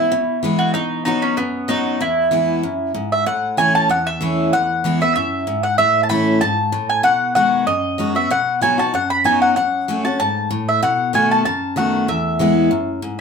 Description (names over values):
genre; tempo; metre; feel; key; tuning
bluegrass; 191 BPM; 4/4; swing 53% on 8ths; E major; A4 = 439 Hz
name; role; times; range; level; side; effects
mandolin; melody; 0.0-13.0 s; B3 to B5; -17 LUFS; right 1 dB; none
picked steel-string acoustic guitar; accompaniment; 0.0-13.2 s; E2 to F#4; -20 LUFS; left 2 dB; none
room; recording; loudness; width
wet small room reverb, RT60 0.5 s; band playing live in one room; -15 LUFS; side -6 dB against mid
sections
0.0-3.3 A section; 3.3-13.2 B section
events
none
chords
0.0 E; 0.7 B; 2.0 E; 3.3 A; 4.5 E; 5.8 A; 7.0 B6; 8.3 B; 9.6 F#m; 10.8 B7; 12.1 E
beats
0.12 0.43 | 0.75 1.06 1.38 1.69 | 2.01 2.32 2.64 2.95 | 3.27 3.58 3.90 4.21 | 4.52 4.84 5.15 5.47 | 5.78 6.10 6.41 6.73 | 7.04 7.36 7.67 7.99 | 8.30 8.62 8.93 9.24 | 9.56 9.88 10.19 10.51 | 10.82 11.13 11.45 11.76 | 12.08 12.39 12.71 13.02